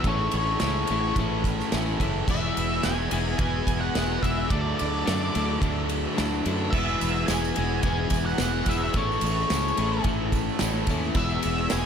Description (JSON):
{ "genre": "indie rock", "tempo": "108 BPM", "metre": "4/4", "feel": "straight", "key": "A major", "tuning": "A4 = 440 Hz", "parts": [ { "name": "octave-fuzz lead guitar", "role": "melody", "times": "0.0-11.9 s", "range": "C#5 to G#5", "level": "-30 LUFS", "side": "left 1 dB", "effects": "distortion, slapback echo" }, { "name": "crunchy overdriven guitar", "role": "riff", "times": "0.0-11.9 s", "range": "E3 to A4", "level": "-31 LUFS", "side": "right 8 dB", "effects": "analog chorus, slapback echo" }, { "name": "twelve-string electric guitar", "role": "riff", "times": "0.0-11.9 s", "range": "E2 to E4", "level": "-30 LUFS", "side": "left 10 dB", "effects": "none" }, { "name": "fingered electric bass", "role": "bass", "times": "0.0-11.9 s", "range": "E1 to F#2", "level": "-29 LUFS", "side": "right 1 dB", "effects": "none" }, { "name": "loose indie drum kit", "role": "drums", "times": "0.0-11.8 s", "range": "crash cymbal, kick drum, ride cymbal, snare drum", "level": "-28 LUFS", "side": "equal", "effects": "none" }, { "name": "tambourine", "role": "percussion", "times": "6.8-11.8 s", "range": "none", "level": "-43 LUFS", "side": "right 15 dB", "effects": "none" } ], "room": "light reverb, small room reverb", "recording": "none", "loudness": "-23 LUFS", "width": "side -7 dB against mid", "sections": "0.0-11.9 A section", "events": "none", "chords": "0.1 A; 2.3 E; 4.5 Dadd9; 6.7 E; 8.9 A; 11.2 E" }